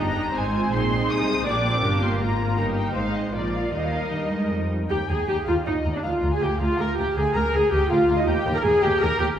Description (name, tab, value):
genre	quick classical-period movement for string orchestra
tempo	161 BPM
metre	3/4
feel	straight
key	Eb major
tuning	A4 = 440 Hz
part	muted symphonic violin section	melody	0.0-9.3 s	D5 to Eb6	-31 LUFS	left 2 dB	none
part	muted symphonic violin section	second line	0.0-9.3 s	F4 to Bb5	-29 LUFS	equal	none
part	muted symphonic viola section	accompaniment	0.0-9.3 s	F3 to Bb4	-24 LUFS	equal	none
part	muted symphonic cello section	bass	0.0-9.3 s	D2 to Ab3	-28 LUFS	right 1 dB	none
part	muted symphonic double bass section	bass	0.0-9.3 s	G1 to G2	-29 LUFS	right 1 dB	none
room	wet recital hall reverb, RT60 1.7 s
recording	heard from further back in the room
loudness	-20 LUFS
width	side -9 dB against mid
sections	0.0-4.9 A section; 4.9-9.4 B section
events	none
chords	0.3 Ab; 1.5 Bb; 2.6 Eb/G; 3.0 Ab; 3.3 Bb; 3.7 Eb; 4.9 Eb5; 6.0 Bb/D; 8.3 Eb5